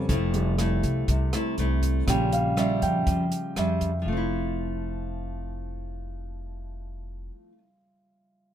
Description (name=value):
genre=bossa nova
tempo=121 BPM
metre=4/4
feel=straight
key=F major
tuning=A4 = 438 Hz
part: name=nylon-string guitar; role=accompaniment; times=0.0-7.7 s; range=Bb2 to F4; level=-30 LUFS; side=equal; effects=none
part: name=warm grand piano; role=accompaniment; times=0.0-8.5 s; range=Db3 to G5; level=-29 LUFS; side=right 1 dB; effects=none
part: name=upright bass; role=bass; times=0.0-7.3 s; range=F1 to F2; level=-28 LUFS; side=equal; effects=none
part: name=compact cocktail drum kit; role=drums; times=0.1-3.9 s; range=hi-hat, kick drum, rim click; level=-30 LUFS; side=equal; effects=none
room=little or no reverb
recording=none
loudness=-23 LUFS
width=side -10 dB against mid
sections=0.0-4.1 A section; 4.1-8.0 B section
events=grand piano solo 0.0-4.1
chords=0.1 Fmaj7; 2.1 Bbm6; 4.1 Fmaj7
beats=| 0.09 0.58 1.08 1.57 | 2.07 2.57 3.06 3.56 | 4.05 4.55 5.05 5.54 | 6.04 6.54 7.03 7.53